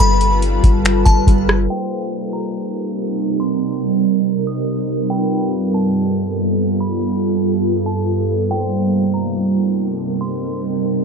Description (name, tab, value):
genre	hip hop, atmospheric cloud-rap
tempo	141 BPM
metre	4/4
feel	half-time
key	C dorian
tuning	A4 = 436 Hz
part	delicate synth tine bell	melody	0.0-10.6 s	G5 to Eb6	-25 LUFS	left 2 dB	chorus, ping-pong delay
part	ethereal airy pad	sustained chords	0.0-11.0 s	G2 to B4	-17 LUFS	right 2 dB	ensemble chorus, built-in reverb, phaser, sidechain pumping
part	soft 808-style bass	bass	0.0-1.7 s	G1	-17 LUFS	equal	none
part	booming analog drum machine	drums	0.0-1.6 s	finger snaps, hi-hat, kick drum, rim click	-14 LUFS	equal	vintage 12-bit sampler grit
part	cimbalom	texture	0.0-11.0 s	G3 to C5	-32 LUFS	equal	none
room	light reverb, digital ambience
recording	dark, warm production, low-pass filter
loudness	-15 LUFS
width	side -5 dB against mid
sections	0.0-1.7 A section; 1.7-11.0 B section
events	filter sweep 1.7-11.0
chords	0.0 G7; 1.7 Cm7; 5.1 G7; 8.5 Cm7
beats	| 0.00 0.42 0.85 1.27 | 1.70 2.13 2.55 2.98 | 3.40 3.83 4.25 4.68 | 5.11 5.53 5.96 6.38 | 6.81 7.23 7.66 8.08 | 8.51 8.94 9.36 9.79 | 10.21 10.64